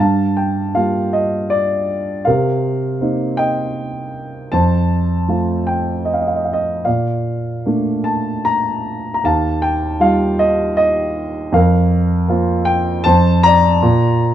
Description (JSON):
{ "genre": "classical, lyrical solo piano", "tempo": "78 BPM", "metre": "3/4", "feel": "rubato", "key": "Bb major", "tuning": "A4 = 440 Hz", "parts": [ { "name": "dark grand piano", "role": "solo", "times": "0.0-14.3 s", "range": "Eb2 to Bb5", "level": "-14 LUFS", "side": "equal", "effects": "none" } ], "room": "light reverb", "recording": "dark, warm production", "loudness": "-14 LUFS", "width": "side -11 dB against mid", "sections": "0.0-14.3 A section", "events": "none", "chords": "0.0 Gm7; 2.3 Cm7; 4.5 F; 6.9 Bbmaj7; 9.2 Ebadd9; 11.5 Fsus4; 13.0 F; 13.8 Bb", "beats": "0.75 1.51 | 2.26 3.01 3.77 | 4.53 5.29 6.06 | 6.86 7.67 8.46 | 9.24 10.01 10.76 | 11.52 12.28 13.04 | 13.82" }